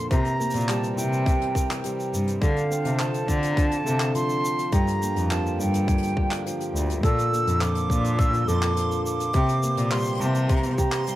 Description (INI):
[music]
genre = folktronica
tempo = 104 BPM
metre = 4/4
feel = straight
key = unclear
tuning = A4 = 440 Hz
[part]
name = concert flute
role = melody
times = 0.0-11.2 s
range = F5 to E6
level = -29 LUFS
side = right 2 dB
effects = none
[part]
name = pedal harmonium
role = sustained chords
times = 0.0-11.2 s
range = D3 to C5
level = -33 LUFS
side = right 1 dB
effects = vintage 12-bit sampler grit
[part]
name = flamenco guitar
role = arpeggios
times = 0.0-11.2 s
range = G2 to Bb4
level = -28 LUFS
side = equal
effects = none
[part]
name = rich cello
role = bass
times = 0.1-10.7 s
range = D2 to D3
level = -26 LUFS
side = equal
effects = tube saturation
[part]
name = electronic kick drum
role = drums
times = 0.1-10.9 s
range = none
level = -24 LUFS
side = equal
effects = none
[part]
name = jazz brush drum kit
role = drums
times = 0.1-11.2 s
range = handclaps, hi-hat, shaker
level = -34 LUFS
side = left 1 dB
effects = none
[part]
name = backwards swelling texture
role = texture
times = 7.7-11.2 s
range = C6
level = -41 LUFS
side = right 2 dB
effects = built-in reverb
[sound]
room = light reverb, small room ambience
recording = none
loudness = -21 LUFS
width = side -14 dB against mid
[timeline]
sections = 0.0-11.2 A section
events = none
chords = 0.1 C7; 2.4 Dm7; 4.7 Gm7; 7.0 Bbmaj7; 9.3 C7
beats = | 0.11 0.69 1.26 1.84 | 2.42 3.00 3.57 4.15 | 4.73 5.30 5.88 6.46 | 7.03 7.61 8.19 8.77 | 9.34 9.92 10.49 11.07